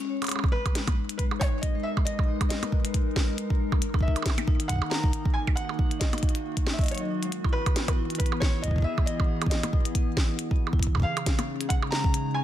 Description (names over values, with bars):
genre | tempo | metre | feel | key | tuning
IDM | 137 BPM | 4/4 | swing 56% on 16ths | G# minor | A4 = 436 Hz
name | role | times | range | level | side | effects
vibraphone with medium mallets | arpeggios | 0.0-12.4 s | F#3 to C#5 | -35 LUFS | left 3 dB | ping-pong delay
glitchy drum kit | drums | 0.0-12.2 s | hi-hat, percussion blips, snare drum | -32 LUFS | right 1 dB | none
warbly tape-like pad | sustained chords | 0.3-12.4 s | C#3 to B4 | -34 LUFS | left 1 dB | chorus, built-in reverb, vintage 12-bit sampler grit
electronic kick drum | drums | 0.4-12.1 s | none | -25 LUFS | equal | none
felt-muted upright piano | melody | 0.5-12.4 s | B4 to A#5 | -34 LUFS | equal | dub echo
room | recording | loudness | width
little or no reverb | dense, heavily limited modern master | -24 LUFS | side -12 dB against mid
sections
0.3-12.4 A section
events
break 0.0-0.3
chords
0.3 G#madd9; 3.8 D#m; 7.3 E; 10.8 C#add9